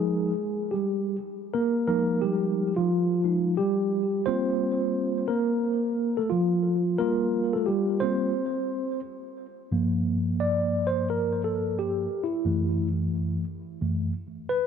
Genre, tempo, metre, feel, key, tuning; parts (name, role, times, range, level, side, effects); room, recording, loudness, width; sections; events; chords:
hip hop; 88 BPM; 4/4; swing 62% on 16ths; G phrygian, G dorian from 9.7 s; A4 = 442 Hz
mellow tine electric piano; solo; 0.0-14.7 s; F#2 to D5; -24 LUFS; equal; medium stereo tremolo, tape echo
light reverb; dark, warm production; -24 LUFS; side -7 dB against mid
0.0-9.7 A section; 9.7-14.7 B section
tine electric piano solo 0.0-9.7, 9.7-14.7
0.0 Fm11; 4.3 Gm11; 9.7 Gm7; 12.1 F#m7